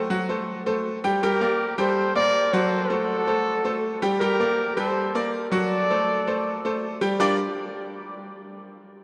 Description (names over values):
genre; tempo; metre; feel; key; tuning
latin; 161 BPM; 4/4; straight; G minor; A4 = 440 Hz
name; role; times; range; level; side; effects
bright grand piano; accompaniment; 0.0-7.4 s; F#3 to G5; -27 LUFS; equal; none
mellow trumpet section; melody; 1.2-7.4 s; F#4 to D5; -26 LUFS; equal; none
room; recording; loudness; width
wet cathedral reverb, RT60 5.1 s; in a vast, echoing space; -24 LUFS; mono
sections
0.0-1.2 A section; 1.2-7.2 B section; 7.2-8.7 C section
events
none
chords
0.0 F#dim; 1.2 Gm; 2.7 F#dim; 4.2 Gm; 5.7 D7; 7.2 Gm7